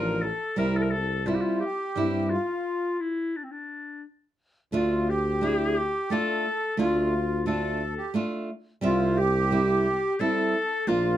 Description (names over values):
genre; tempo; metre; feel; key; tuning
klezmer; 87 BPM; 3/4; straight; D minor; A4 = 440 Hz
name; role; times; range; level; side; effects
bright clarinet; melody; 0.0-11.2 s; C4 to Bb4; -27 LUFS; left 3 dB; none
accordion; second line; 0.0-11.2 s; F4 to Bb4; -31 LUFS; right 5 dB; light tremolo tuning
nylon-string guitar; accompaniment; 0.0-11.2 s; F3 to E5; -27 LUFS; right 2 dB; none
mellow tuba; bass; 0.0-11.2 s; A1 to G2; -29 LUFS; equal; none
room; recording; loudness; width
moderate small room reverb, RT60 0.5 s; dark, warm production; -24 LUFS; side -12 dB against mid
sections
0.0-4.7 A section; 4.7-11.2 B section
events
stop 2.7-4.7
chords
0.0 Dm; 0.6 C; 2.7 N.C.; 4.7 Dm; 8.8 C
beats
| 0.59 1.28 1.97 | 2.66 3.35 4.04 | 4.72 5.41 6.10 | 6.79 7.47 8.15 | 8.84 9.52 10.20 | 10.88